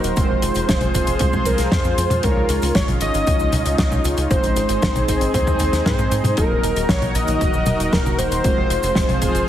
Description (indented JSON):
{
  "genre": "italo disco",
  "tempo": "116 BPM",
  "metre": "4/4",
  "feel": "straight",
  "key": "unclear",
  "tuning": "A4 = 443 Hz",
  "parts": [
    { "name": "wide unison lead", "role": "melody", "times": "0.0-9.5 s", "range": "Bb4 to Eb5", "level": "-23 LUFS", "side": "equal", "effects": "ping-pong delay" },
    { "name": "lush unison pad", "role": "sustained chords", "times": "0.0-9.5 s", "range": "Eb3 to C5", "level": "-25 LUFS", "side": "left 1 dB", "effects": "chorus" },
    { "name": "analog synth brass", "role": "stabs", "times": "0.0-9.5 s", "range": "Gb3 to Db5", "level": "-26 LUFS", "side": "right 2 dB", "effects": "chorus" },
    { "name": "tight sequencer bass", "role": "bass", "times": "0.0-9.4 s", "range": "Eb1 to Ab2", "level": "-24 LUFS", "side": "equal", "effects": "none" },
    { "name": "damped 70s drum kit", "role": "drums", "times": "0.0-9.5 s", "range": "cabasa, hi-hat, snare drum, toms", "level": "-23 LUFS", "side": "equal", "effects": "studio reverb" },
    { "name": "electronic kick drum", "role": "drums", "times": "0.2-9.3 s", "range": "none", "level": "-22 LUFS", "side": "equal", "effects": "studio reverb" }
  ],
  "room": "light reverb, studio reverb",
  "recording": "heavily compressed radio sound, multiband compression",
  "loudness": "-16 LUFS",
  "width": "side -11 dB against mid",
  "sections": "0.0-9.5 A section",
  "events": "none",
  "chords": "0.2 Fm; 2.2 Dbadd9; 4.3 Ab; 6.4 Ebm; 8.4 Fm",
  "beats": "| 0.17 0.69 1.20 1.72 | 2.24 2.75 3.27 3.79 | 4.31 4.82 5.34 5.86 | 6.38 6.89 7.41 7.93 | 8.44 8.96 9.48"
}